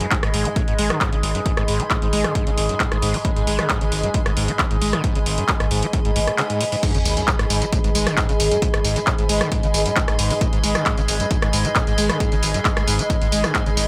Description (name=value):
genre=driving peak-time techno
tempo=134 BPM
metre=4/4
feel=straight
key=G# minor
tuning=A4 = 441 Hz
part: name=overdriven acid bass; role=riff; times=0.0-13.9 s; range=G#1 to G#3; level=-28 LUFS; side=equal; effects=distortion, analog chorus, sidechain pumping, tape echo
part: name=overtone-sweeping drone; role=drone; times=0.0-13.9 s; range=G#2 to G#3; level=-31 LUFS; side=equal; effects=chorus, built-in reverb, sidechain pumping
part: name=techno drum kit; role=drums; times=0.0-13.9 s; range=crash cymbal, handclaps, hi-hat, rim click, tambourine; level=-26 LUFS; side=equal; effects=sidechain pumping on hats, sidechain pumping on cymbals, sidechain pumping on perc
part: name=granular cloud pad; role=texture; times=0.0-13.9 s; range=G#4 to B5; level=-29 LUFS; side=equal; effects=built-in reverb, sidechain pumping
part: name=electronic kick drum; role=drums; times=0.1-13.6 s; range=none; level=-25 LUFS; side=equal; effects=none
part: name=saturated sub bass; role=bass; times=0.2-13.9 s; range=G#1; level=-28 LUFS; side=equal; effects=overdrive, sidechain pumping, low-pass filter
part: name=swell and sub drop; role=sound effects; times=6.1-8.6 s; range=none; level=-33 LUFS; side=equal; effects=none
room=light reverb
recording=none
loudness=-20 LUFS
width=mono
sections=0.0-6.8 A section; 6.8-13.9 B section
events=kick drops out 6.4-6.8; drop 6.8-13.9; impact 6.8-8.6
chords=0.0 G#m